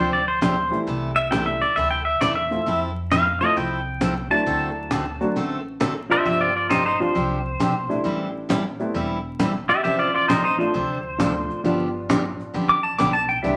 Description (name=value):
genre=country, western swing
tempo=134 BPM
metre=4/4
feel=swing 67% on 8ths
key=unclear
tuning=A4 = 440 Hz
part: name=pedal steel guitar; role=second line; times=0.0-13.6 s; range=Eb4 to D6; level=-24 LUFS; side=equal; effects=none
part: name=picked steel-string acoustic guitar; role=accompaniment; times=0.0-13.6 s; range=C3 to A4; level=-29 LUFS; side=equal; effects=none
part: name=upright bass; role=bass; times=0.0-13.6 s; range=E1 to F2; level=-35 LUFS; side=equal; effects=none
part: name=cajon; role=drums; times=0.4-13.5 s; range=none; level=-29 LUFS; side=equal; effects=none
part: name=dark upright piano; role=accompaniment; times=0.7-13.6 s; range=E3 to F#4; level=-28 LUFS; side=equal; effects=none
room=wet studio reverb, RT60 0.7 s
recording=vinyl crackle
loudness=-22 LUFS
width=mono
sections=0.9-13.6 A section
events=pedal steel guitar solo 0.9-13.6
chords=0.0 G7sus4; 0.9 C6; 2.7 Fmaj7; 4.5 D7; 6.3 G7sus4; 8.0 Am7; 9.8 Dm7/A; 11.6 G7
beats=0.42 | 0.87 1.32 1.76 2.21 | 2.66 3.11 3.56 4.01 | 4.46 4.91 5.36 5.80 | 6.25 6.70 7.15 7.60 | 8.05 8.50 8.95 9.39 | 9.84 10.29 10.74 11.19 | 11.64 12.09 12.54 12.99 | 13.44